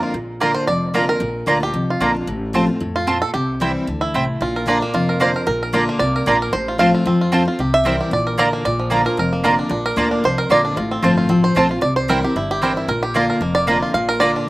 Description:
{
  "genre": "bluegrass",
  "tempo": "226 BPM",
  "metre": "4/4",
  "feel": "straight",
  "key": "Bb major",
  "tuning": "A4 = 441 Hz",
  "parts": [
    { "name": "bluegrass banjo", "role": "melody", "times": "0.0-14.5 s", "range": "F3 to F5", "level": "-20 LUFS", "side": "right 1 dB", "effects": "slapback echo" },
    { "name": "picked steel-string acoustic guitar", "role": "accompaniment", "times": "0.0-14.5 s", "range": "F2 to F4", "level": "-20 LUFS", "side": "left 1 dB", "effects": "slapback echo" },
    { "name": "upright bass", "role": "bass", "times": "0.1-14.3 s", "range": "F1 to F2", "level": "-27 LUFS", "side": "equal", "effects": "none" },
    { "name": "mandolin", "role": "stabs", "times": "0.4-14.3 s", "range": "Bb3 to Bb5", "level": "-19 LUFS", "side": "right 2 dB", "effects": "none" }
  ],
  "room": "little or no reverb",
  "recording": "recorded outdoors, with no room sound",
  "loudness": "-16 LUFS",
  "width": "side -18 dB against mid",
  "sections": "0.1-8.7 A section; 8.7-14.5 A section",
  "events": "five-string banjo solo 0.1-14.5",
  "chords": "0.1 Bb; 2.3 F/A; 3.3 C; 4.4 Bb; 6.5 F/A; 7.6 C; 8.1 Bb; 10.8 F; 11.8 C; 12.9 Bb"
}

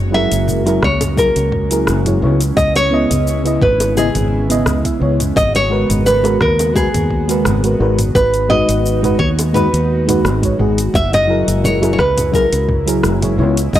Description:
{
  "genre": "sunset chillout",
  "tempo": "86 BPM",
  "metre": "4/4",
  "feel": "swing 54% on 16ths",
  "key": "unclear",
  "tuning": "A4 = 441 Hz",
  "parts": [
    { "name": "airy breathy pad", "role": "sustained chords", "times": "0.0-13.8 s", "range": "A#2 to D#5", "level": "-23 LUFS", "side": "equal", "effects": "chorus" },
    { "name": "fingered electric bass", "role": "bass", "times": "0.0-13.8 s", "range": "F#1 to D#2", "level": "-18 LUFS", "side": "equal", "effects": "none" },
    { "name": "nylon-string guitar", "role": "melody", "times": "0.1-13.8 s", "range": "G#4 to E5", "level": "-17 LUFS", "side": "equal", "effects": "analog delay" },
    { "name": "mellow FM electric piano", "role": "accompaniment", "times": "0.1-13.6 s", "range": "C#3 to E5", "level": "-18 LUFS", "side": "moving between left 5 dB and right 3 dB", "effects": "chorus, auto-pan, analog delay" },
    { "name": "deep house drum kit", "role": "drums", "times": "0.3-13.8 s", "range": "cabasa, hi-hat, rim click, toms", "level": "-22 LUFS", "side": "equal", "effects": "none" },
    { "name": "bongos", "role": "percussion", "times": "0.7-12.3 s", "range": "none", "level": "-25 LUFS", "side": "left 1 dB", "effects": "none" },
    { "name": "electronic kick drum", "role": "drums", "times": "0.8-13.8 s", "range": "none", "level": "-20 LUFS", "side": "equal", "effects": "none" }
  ],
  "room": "little or no reverb",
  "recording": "dry, gritty hardware recording",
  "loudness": "-12 LUFS",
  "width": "side -12 dB against mid",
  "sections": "0.0-13.8 A section",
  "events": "none",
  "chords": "0.0 F#9; 2.2 C#m9; 5.4 G#m9; 8.2 G#m7; 10.9 F#9"
}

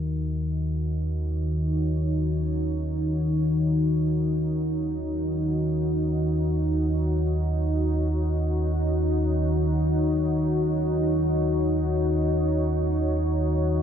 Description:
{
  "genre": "dark ambient drone",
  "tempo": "free time",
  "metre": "none",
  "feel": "none",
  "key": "unclear",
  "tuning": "A4 = 441 Hz",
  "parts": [
    { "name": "deep dark ambient pad", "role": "sustained chords", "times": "0.0-13.8 s", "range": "Eb4 to Db5", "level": "-27 LUFS", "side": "equal", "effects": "chorus, built-in reverb" },
    { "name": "analog drone", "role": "drone", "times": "0.0-13.8 s", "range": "Eb2 to Eb3", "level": "-24 LUFS", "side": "equal", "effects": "lush chorus" },
    { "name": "bronze singing bowl", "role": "texture", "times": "0.0-13.8 s", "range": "Bb4", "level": "-56 LUFS", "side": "right 2 dB", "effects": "none" }
  ],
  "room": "moderate huge ambient reverb, RT60 8.6 s",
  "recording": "in a vast, echoing space",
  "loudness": "-22 LUFS",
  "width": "side -8 dB against mid",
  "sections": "0.0-13.8 A section",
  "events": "none",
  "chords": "0.0 Ebm"
}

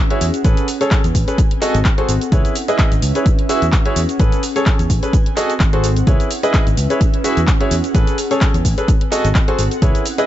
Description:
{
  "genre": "piano house",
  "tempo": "128 BPM",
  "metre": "4/4",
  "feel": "swing 55% on 16ths",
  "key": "unclear",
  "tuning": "A4 = 439 Hz",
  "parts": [
    { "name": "airy breathy pad", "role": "texture", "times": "0.0-10.3 s", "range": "B#3 to G#5", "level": "-24 LUFS", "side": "equal", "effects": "chorus, sidechain pumping" },
    { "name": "clear concert grand piano", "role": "riff", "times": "0.1-10.3 s", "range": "C#4 to E5", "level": "-20 LUFS", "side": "equal", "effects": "sidechain pumping, tape echo" },
    { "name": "house drum kit", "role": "drums", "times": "0.1-10.3 s", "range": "handclaps, hi-hat, shaker", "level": "-24 LUFS", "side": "equal", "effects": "none" },
    { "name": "fingered electric bass", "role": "bass", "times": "0.2-9.9 s", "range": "G#1 to E2", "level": "-18 LUFS", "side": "equal", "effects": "tube saturation, sidechain pumping" },
    { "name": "electronic kick drum", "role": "drums", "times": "0.4-9.9 s", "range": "none", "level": "-15 LUFS", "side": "equal", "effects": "none" }
  ],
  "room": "little or no reverb",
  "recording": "nothing above 7.8 kHz",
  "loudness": "-13 LUFS",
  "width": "side -13 dB against mid",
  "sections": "0.0-10.3 A section",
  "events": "none",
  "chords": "0.4 Amaj9; 1.4 G#7b9; 2.3 C#m7; 3.3 E69; 4.2 Amaj9; 5.1 G#7b9; 6.1 C#m7; 7.0 E69; 7.9 Amaj9; 8.9 G#7b9"
}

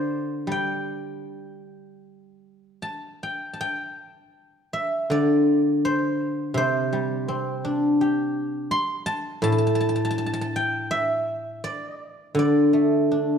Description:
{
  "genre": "chinese traditional, Chinese solo plucked strings",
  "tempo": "73-85 BPM",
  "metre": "4/4",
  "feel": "rubato",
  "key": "G zhi mode",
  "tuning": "A4 = 440 Hz",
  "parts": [
    { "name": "guzheng", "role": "solo", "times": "0.0-13.4 s", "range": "A2 to C6", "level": "-22 LUFS", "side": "equal", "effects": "none" }
  ],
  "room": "moderate scoring stage reverb, RT60 1.6 s",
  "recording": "dark, warm production",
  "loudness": "-21 LUFS",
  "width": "side -7 dB against mid",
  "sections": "0.0-3.6 A section; 3.6-13.4 B section",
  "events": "none",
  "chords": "none"
}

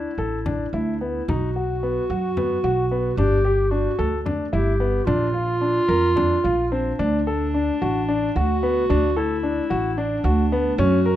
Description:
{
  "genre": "contemporary instrumental, chamber music in an uneven meter",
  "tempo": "221 BPM (eighths)",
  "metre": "7/8",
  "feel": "straight",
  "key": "D major",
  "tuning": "A4 = 440 Hz",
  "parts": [
    { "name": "dark clarinet", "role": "second line", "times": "0.0-11.2 s", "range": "D4 to G4", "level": "-24 LUFS", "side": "equal", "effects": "none" },
    { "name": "warm grand piano", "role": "arpeggios", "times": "0.0-11.2 s", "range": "B3 to Bb4", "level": "-24 LUFS", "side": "left 2 dB", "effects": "none" },
    { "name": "upright bass", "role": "bass", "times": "0.0-11.2 s", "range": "G1 to F#2", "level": "-24 LUFS", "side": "right 2 dB", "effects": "none" },
    { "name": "frame drum", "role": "percussion", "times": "0.5-6.6 s", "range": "none", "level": "-31 LUFS", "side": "left 2 dB", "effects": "none" }
  ],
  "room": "light reverb",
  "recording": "dark, warm production",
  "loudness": "-19 LUFS",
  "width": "side -12 dB against mid",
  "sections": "0.0-7.0 A section; 7.0-11.2 B section",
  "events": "none",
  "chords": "0.0 Dsus2; 1.3 B5; 3.2 G5; 5.1 Bb; 7.0 D"
}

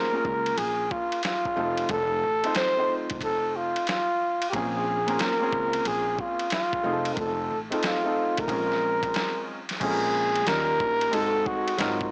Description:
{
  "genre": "hip hop, jazz-hop",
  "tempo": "91 BPM",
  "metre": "4/4",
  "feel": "swing 65% on 16ths",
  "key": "Bb minor",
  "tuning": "A4 = 438 Hz",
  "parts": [
    { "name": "warm flugelhorn", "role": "melody", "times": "0.0-12.1 s", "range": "F4 to C5", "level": "-28 LUFS", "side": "equal", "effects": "none" },
    { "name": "clear upright piano", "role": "accompaniment", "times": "0.0-12.1 s", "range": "Gb3 to C5", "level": "-33 LUFS", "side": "equal", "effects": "none" },
    { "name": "upright bass", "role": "bass", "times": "0.2-12.1 s", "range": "F1 to Eb2", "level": "-40 LUFS", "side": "equal", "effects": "transformer saturation" },
    { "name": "boom bap sampler-style drum kit", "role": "drums", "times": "0.2-12.1 s", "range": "crash cymbal, hi-hat, kick drum, ride cymbal, snare drum", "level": "-35 LUFS", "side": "equal", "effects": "none" }
  ],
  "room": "light reverb, small room ambience",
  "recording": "blown-out, overdriven recording, overdrive, small speaker sound",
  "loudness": "-26 LUFS",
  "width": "mono",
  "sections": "0.0-9.8 A section; 9.8-12.1 B section",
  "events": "none",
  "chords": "0.0 Bbm7; 1.6 F7; 4.5 Bbm7; 6.8 F7; 8.5 Bbm9; 10.5 Eb7; 11.1 Ab7b9"
}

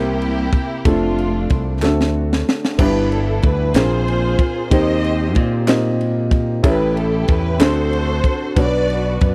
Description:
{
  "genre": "slow gospel",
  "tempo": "62 BPM (dotted quarters)",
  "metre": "6/8",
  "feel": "straight",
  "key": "unclear",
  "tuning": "A4 = 440 Hz",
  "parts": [
    { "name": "rich studio string section", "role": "melody", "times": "0.0-9.3 s", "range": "A3 to Eb5", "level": "-24 LUFS", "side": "equal", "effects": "none" },
    { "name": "warm upright piano", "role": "accompaniment", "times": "0.0-9.3 s", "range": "G2 to Eb5", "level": "-23 LUFS", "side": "equal", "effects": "none" },
    { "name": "modern bright fingered electric bass", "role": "bass", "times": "0.0-9.3 s", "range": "F1 to Bb2", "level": "-22 LUFS", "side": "equal", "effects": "none" },
    { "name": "tight funk drum kit", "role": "drums", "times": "0.2-9.3 s", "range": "crash cymbal, kick drum, ride cymbal, snare drum", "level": "-20 LUFS", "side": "equal", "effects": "none" },
    { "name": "group handclap", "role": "percussion", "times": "1.8-7.9 s", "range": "none", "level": "-32 LUFS", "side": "equal", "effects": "none" }
  ],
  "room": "small room ambience",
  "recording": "dry, close 1970s-style studio recording",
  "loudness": "-17 LUFS",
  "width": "mono",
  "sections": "0.0-2.8 A section; 2.8-9.3 A section",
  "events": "drum fill 1.8-2.8",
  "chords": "0.0 C7; 0.9 F6; 1.8 D7; 2.8 G6; 3.7 Bb9; 4.7 Eb6; 6.6 A7; 7.6 D7; 8.6 Bm"
}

